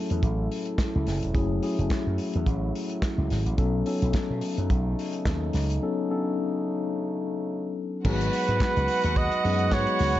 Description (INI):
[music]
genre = disco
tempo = 108 BPM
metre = 4/4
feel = swing 56% on 16ths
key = unclear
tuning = A4 = 439 Hz
[part]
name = mellow tine electric piano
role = accompaniment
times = 0.0-10.2 s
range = F#3 to A4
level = -29 LUFS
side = left 4 dB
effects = slow stereo tremolo
[part]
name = mellow French horn section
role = sustained chords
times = 0.0-10.2 s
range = A2 to F#4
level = -36 LUFS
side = right 2 dB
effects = stereo widening
[part]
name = slap bass with an envelope filter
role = bass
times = 0.1-10.2 s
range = E1 to B2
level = -26 LUFS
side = equal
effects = none
[part]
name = warm soul drum kit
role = drums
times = 0.1-10.2 s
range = crash cymbal, handclaps, hi-hat, kick drum, snare drum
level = -29 LUFS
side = equal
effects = none
[part]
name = warm studio violin section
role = second line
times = 8.0-10.2 s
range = F#4 to F#5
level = -32 LUFS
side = right 3 dB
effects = none
[part]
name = mellow horn section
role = stabs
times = 8.0-10.2 s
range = G#3 to B4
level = -34 LUFS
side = right 3 dB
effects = none
[part]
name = warm flugelhorn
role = melody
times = 8.1-10.2 s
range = B4 to D#5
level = -26 LUFS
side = right 3 dB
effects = slapback echo
[sound]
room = small room ambience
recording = dark, warm production, nothing above 7.7 kHz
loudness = -24 LUFS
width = side -13 dB against mid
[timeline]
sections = 0.0-8.0 A section; 8.0-10.2 B section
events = break 5.8-8.0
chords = 0.0 F#m9; 3.6 B9; 8.0 G#m7